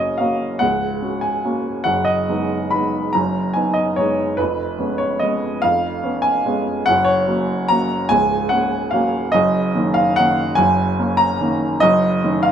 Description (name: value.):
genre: classical, piano waltz.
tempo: 144 BPM.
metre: 3/4.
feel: rubato.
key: F# major.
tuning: A4 = 439 Hz.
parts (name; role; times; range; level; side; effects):
clear upright piano; solo; 0.0-12.5 s; C#1 to B5; -16 LUFS; equal; none.
room: moderate stone room reverb, RT60 1.2 s.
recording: minimal, uncompressed stereo recording.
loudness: -16 LUFS.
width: side -8 dB against mid.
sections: 0.0-12.5 A section.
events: none.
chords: 0.0 F#; 1.9 G#m7/F#; 4.4 C#7/E#; 6.9 F#; 9.3 Ebm7/Gb; 11.8 Ebm7b5/Gb.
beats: 0.20 | 0.62 1.03 1.46 | 1.88 2.30 2.73 | 3.15 3.56 3.98 | 4.40 4.80 5.22 | 5.63 6.03 6.45 | 6.87 7.27 7.69 | 8.10 8.51 8.93 | 9.34 9.74 10.16 | 10.58 10.99 11.41 | 11.81 12.22.